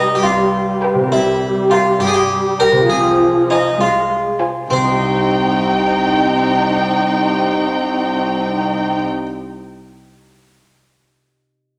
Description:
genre	cinematic, playful, whimsical film cue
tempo	67 BPM (dotted quarters)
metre	6/8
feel	straight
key	C minor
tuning	A4 = 435 Hz
part	harpsichord	melody	0.0-9.3 s	C4 to Bb4	-19 LUFS	equal	none
part	warm studio violin section	melody	0.0-9.0 s	G5 to Ab5	-24 LUFS	equal	none
part	rich studio violin section	second line	0.0-9.0 s	Eb4 to C5	-23 LUFS	equal	none
part	dark studio viola section	accompaniment	0.0-9.0 s	F3 to C4	-22 LUFS	equal	none
part	concert harp	arpeggios	0.0-9.5 s	C3 to Eb5	-23 LUFS	equal	none
part	rich studio cello section	bass	0.0-9.0 s	C2 to G2	-25 LUFS	equal	none
room	wet scoring stage reverb, RT60 1.6 s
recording	none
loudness	-16 LUFS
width	mono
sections	0.0-4.7 A section; 4.7-8.3 B section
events	none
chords	0.0 G7/C; 1.1 C7; 2.9 Fm/C; 4.7 Cm

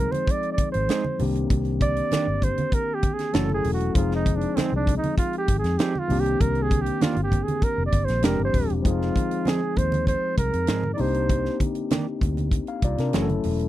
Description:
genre	lush 1970s-style soul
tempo	98 BPM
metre	4/4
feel	straight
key	F dorian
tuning	A4 = 440 Hz
part	breathy flugelhorn	melody	0.0-11.6 s	C4 to D5	-27 LUFS	right 3 dB	none
part	overdriven tine electric piano	accompaniment	0.0-13.7 s	Eb3 to F5	-28 LUFS	left 5 dB	none
part	vintage muted fingered electric bass	bass	0.0-13.7 s	Eb1 to C3	-26 LUFS	equal	none
part	tight funk drum kit	drums	0.1-13.7 s	hi-hat, kick drum, snare drum	-24 LUFS	equal	none
part	congas	percussion	0.1-13.6 s	none	-33 LUFS	right 3 dB	none
part	mellow electric guitar	riff	0.9-13.3 s	Eb3 to Ab4	-27 LUFS	right 5 dB	none
room	little or no reverb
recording	dry, close 1970s-style studio recording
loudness	-21 LUFS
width	side -14 dB against mid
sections	0.0-8.9 A section; 8.9-13.7 B section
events	flugelhorn solo 0.0-8.9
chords	0.0 Fm7; 1.2 Cm9; 3.3 Gbm7; 4.0 Fm7; 6.1 Cm9; 8.2 Fm69; 8.9 Fm7; 11.0 Cm9; 13.1 Gbm7

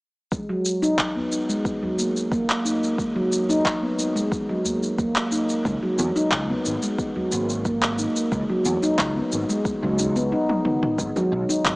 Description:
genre	organic downtempo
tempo	90 BPM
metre	4/4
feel	straight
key	G# minor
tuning	A4 = 440 Hz
part	handpan	arpeggios	0.3-11.6 s	D#3 to D#4	-22 LUFS	equal	low-pass filter, digital delay
part	electronic kick drum	drums	0.3-11.8 s	none	-29 LUFS	equal	studio reverb
part	organic electronic drum kit	drums	0.3-11.8 s	congas, handclaps, shaker, toms	-28 LUFS	equal	overdrive, studio reverb
part	udu	percussion	1.2-10.1 s	none	-47 LUFS	equal	none
part	fretless electric bass	bass	5.7-11.8 s	G#1 to E2	-27 LUFS	equal	ensemble chorus, sidechain pumping
room	moderate huge ambient reverb, RT60 8.3 s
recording	small speaker sound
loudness	-21 LUFS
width	side -24 dB against mid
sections	0.3-11.0 A section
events	drum fill 10.5-11.0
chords	0.3 G#m9; 5.7 C#7sus2; 11.0 G#m7

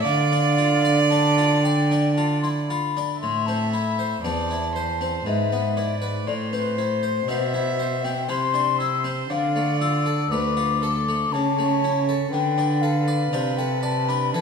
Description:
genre	classical, baroque-style sonata movement with continuo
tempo	59 BPM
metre	3/4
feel	rubato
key	D minor, A minor from 3.2 s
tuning	A4 = 440 Hz
part	baroque flute	melody	0.0-14.4 s	B4 to E6	-26 LUFS	left 8 dB	none
part	warm violin	second line	0.0-14.4 s	A4 to E5	-27 LUFS	right 6 dB	none
part	harpsichord	accompaniment	0.0-14.4 s	D2 to D5	-28 LUFS	left 1 dB	none
part	rich cello	bass	0.0-14.4 s	D2 to E3	-24 LUFS	right 1 dB	none
room	wet recital hall reverb, RT60 1.5 s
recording	none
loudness	-20 LUFS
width	side -6 dB against mid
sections	0.0-3.2 A section; 3.2-14.4 A section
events	none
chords	0.0 Dm; 3.2 Am; 5.3 E/G#; 6.3 Am; 9.3 Dm; 11.3 A/C#; 12.3 D5

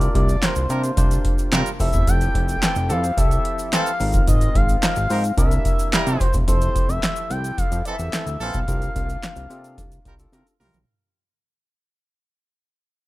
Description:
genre	early-eighties boogie funk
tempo	109 BPM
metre	4/4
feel	straight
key	F major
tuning	A4 = 440 Hz
part	expressive synth lead	melody	0.0-10.3 s	C5 to G5	-26 LUFS	left 1 dB	chorus
part	barky tine electric piano	accompaniment	0.0-10.5 s	C4 to C5	-32 LUFS	left 2 dB	none
part	warm analog pad	sustained chords	0.0-10.9 s	C3 to A4	-36 LUFS	right 1 dB	chorus
part	fat analog bass	bass	0.0-10.8 s	E1 to C3	-23 LUFS	equal	none
part	electro analog drum machine	drums	0.0-10.9 s	handclaps, hi-hat, kick drum, snare drum, toms	-21 LUFS	equal	none
part	tube shaker	percussion	0.0-10.9 s	none	-37 LUFS	right 5 dB	none
part	clear horn section	second line	0.4-10.8 s	E3 to Bb4	-28 LUFS	right 2 dB	none
room	little or no reverb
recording	rough home demo mix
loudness	-18 LUFS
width	side -18 dB against mid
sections	0.0-6.5 A section; 6.5-10.9 B section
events	fade-out 6.5-10.9; drum fill 10.3-10.9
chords	0.0 C9sus4; 1.8 Fmaj9; 4.0 Ab69; 5.4 C7; 6.5 Fmaj9; 8.7 C9sus4

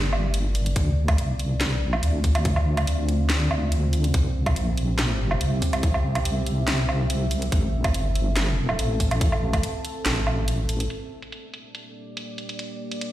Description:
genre	deep dubstep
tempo	142 BPM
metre	4/4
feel	half-time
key	G dorian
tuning	A4 = 440 Hz
part	deep dark ambient pad	sustained chords	0.0-13.1 s	Bb3 to E5	-32 LUFS	right 1 dB	chorus, built-in reverb
part	deep soft wobble bass	bass	0.0-10.9 s	G1 to D2	-23 LUFS	equal	chorus
part	garage drum kit	drums	0.1-13.1 s	handclaps, hi-hat, snare drum, woodblock	-28 LUFS	right 1 dB	overdrive, low-pass filter on hats, low-pass filter on perc, low-pass filter on snare, low-pass filter on toms
part	electronic kick drum	drums	0.8-9.6 s	none	-22 LUFS	equal	overdrive
room	light reverb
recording	played on a big sound system in a bare room, stone room reverb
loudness	-21 LUFS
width	side -14 dB against mid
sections	0.0-10.9 A section; 10.9-13.1 B section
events	none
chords	0.0 Gm; 0.8 Dm7; 4.1 C; 7.5 Am; 10.9 Gm

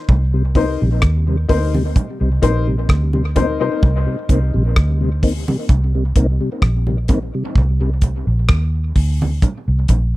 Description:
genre	dub reggae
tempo	64 BPM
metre	4/4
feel	straight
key	C minor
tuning	A4 = 440 Hz
part	vintage muted fingered electric bass	bass	0.1-10.2 s	Bb1 to Eb2	-17 LUFS	equal	none
part	damped 70s drum kit	drums	0.1-10.1 s	hi-hat, kick drum, rim click	-15 LUFS	equal	none
part	congas	percussion	0.1-10.1 s	none	-25 LUFS	right 3 dB	dub echo
part	mellow tonewheel organ	accompaniment	0.3-7.9 s	C3 to Eb4	-23 LUFS	left 1 dB	chorus vibrato, slow rotary speaker, dub echo
part	warm upright piano	stabs	0.6-3.8 s	Eb4 to C5	-23 LUFS	left 6 dB	dub echo
room	little or no reverb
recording	dry, close 1970s-style studio recording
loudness	-14 LUFS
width	side -18 dB against mid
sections	0.1-10.2 A section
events	none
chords	0.1 Cm7

